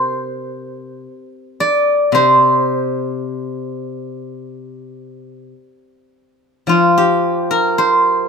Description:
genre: chinese traditional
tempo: 48-59 BPM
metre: 4/4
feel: rubato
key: C shang mode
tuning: A4 = 438 Hz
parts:
  - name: steel-string zither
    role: solo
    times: 0.0-8.3 s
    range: C3 to D5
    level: -14 LUFS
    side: equal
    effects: none
room: moderate studio reverb, RT60 0.6 s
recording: minimal, uncompressed stereo recording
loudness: -13 LUFS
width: side -5 dB against mid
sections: 0.0-6.7 A section; 6.7-8.3 B section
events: none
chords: none

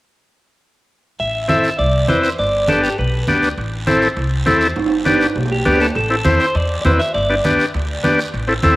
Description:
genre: latin, cumbia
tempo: 202 BPM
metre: 4/4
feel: straight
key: A minor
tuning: A4 = 440 Hz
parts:
  - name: clean electric guitar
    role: melody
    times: 1.2-3.4, 5.5-8.1 s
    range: G4 to E5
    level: -20 LUFS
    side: equal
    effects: cassette tape
  - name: upright bass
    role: bass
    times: 1.2-8.8 s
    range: G1 to E2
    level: -21 LUFS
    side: equal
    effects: none
  - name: guiro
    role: percussion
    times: 1.2-8.8 s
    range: none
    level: -32 LUFS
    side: right 3 dB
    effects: none
  - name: combo organ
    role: accompaniment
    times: 1.5-8.8 s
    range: B3 to C5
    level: -17 LUFS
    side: left 1 dB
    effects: cassette tape
  - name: congas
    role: percussion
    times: 1.5-8.8 s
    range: none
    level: -23 LUFS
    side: right 1 dB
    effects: none
  - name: timbales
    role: percussion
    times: 3.6-8.8 s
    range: none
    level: -24 LUFS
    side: right 5 dB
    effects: none
room: wet spring reverb, RT60 1.8 s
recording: home recording on cassette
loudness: -14 LUFS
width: side -18 dB against mid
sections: 1.2-6.0 A section; 6.0-8.8 B section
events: drum fill 4.8-6.0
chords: 1.2 Am; 2.4 G; 3.6 Am; 4.8 G; 6.0 Am; 7.1 G

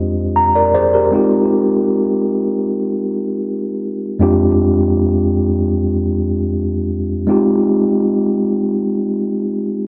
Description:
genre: R&B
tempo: free time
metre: none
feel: none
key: F dorian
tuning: A4 = 438 Hz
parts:
  - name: mellow tine electric piano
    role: solo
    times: 0.0-9.9 s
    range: F2 to Bb5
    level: -16 LUFS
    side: equal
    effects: delay
room: light reverb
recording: worn, warbling old tape, cassette tape, warbly pitch drift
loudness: -16 LUFS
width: mono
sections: 0.0-9.9 A section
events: tine electric piano fill 0.0-1.1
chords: 0.0 Fm13; 1.1 Fm9; 4.2 Fm69; 7.3 Fm9

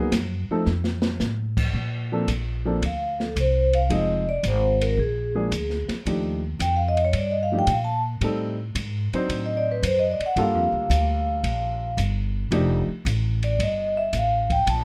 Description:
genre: jazz, small-group swing and bop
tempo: 111 BPM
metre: 4/4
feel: swing 69% on 8ths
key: Bb major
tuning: A4 = 440 Hz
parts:
  - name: dark baby grand piano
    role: accompaniment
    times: 0.0-12.9 s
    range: E#3 to C5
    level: -28 LUFS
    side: equal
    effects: none
  - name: upright bass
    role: bass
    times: 0.1-14.8 s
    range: F1 to Bb2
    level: -28 LUFS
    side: equal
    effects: none
  - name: open jazz drum kit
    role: drums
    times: 0.1-14.8 s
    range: crash cymbal, hi-hat, kick drum, ride cymbal, snare drum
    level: -33 LUFS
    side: equal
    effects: none
  - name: vibraphone with medium mallets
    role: melody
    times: 2.9-14.8 s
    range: Ab4 to A5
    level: -26 LUFS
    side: equal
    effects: none
room: little or no reverb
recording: none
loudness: -24 LUFS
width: mono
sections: 0.0-1.7 A section; 1.7-14.8 B section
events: drum fill 0.7-1.2; vibraphone solo 1.7-14.8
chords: 0.0 G#m9; 0.7 F; 1.7 Bbmaj9; 3.9 Fm7; 5.0 Bb7; 6.1 Ebmaj9#11; 8.2 Am7b5; 9.3 D7b9; 10.4 Gm9; 12.5 F13

